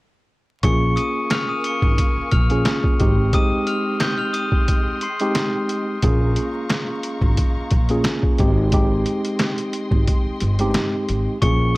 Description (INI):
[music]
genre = hip hop, boom-bap hip-hop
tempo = 89 BPM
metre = 4/4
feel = swing 54% on 16ths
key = unclear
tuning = A4 = 440 Hz
[part]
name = glockenspiel with brass mallets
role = melody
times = 0.6-5.5, 11.4-11.8 s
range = C6 to G7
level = -26 LUFS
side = left 2 dB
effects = high-pass filter, low-pass filter, tape echo
[part]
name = tine electric piano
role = accompaniment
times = 0.6-11.8 s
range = Ab3 to Ab4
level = -23 LUFS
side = equal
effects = overdrive, fast stereo tremolo, cassette tape, high-pass filter, low-pass filter
[part]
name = clear studio string section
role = sustained chords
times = 0.6-11.8 s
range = Ab3 to Db6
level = -35 LUFS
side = left 1 dB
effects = high-pass filter, low-pass filter
[part]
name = upright bass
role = bass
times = 0.6-11.7 s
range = G1 to Bb1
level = -21 LUFS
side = equal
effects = tube saturation
[part]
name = trip hop sampler-style drum kit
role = drums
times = 0.6-11.6 s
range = hi-hat, kick drum, snare drum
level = -20 LUFS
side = equal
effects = vintage 12-bit sampler grit
[part]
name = finger snap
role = percussion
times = 1.3-10.9 s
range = none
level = -36 LUFS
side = left 1 dB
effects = none
[sound]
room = small room ambience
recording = dry, gritty hardware recording, vinyl crackle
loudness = -17 LUFS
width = side -21 dB against mid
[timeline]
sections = 0.6-11.8 A section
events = none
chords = 0.6 Bbm7; 3.0 Abmaj7; 6.0 Bbm7; 8.4 Abmaj7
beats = | 0.64 1.31 1.98 2.66 | 3.33 4.01 4.68 5.35 | 6.03 6.70 7.38 8.05 | 8.72 9.40 10.07 10.75 | 11.42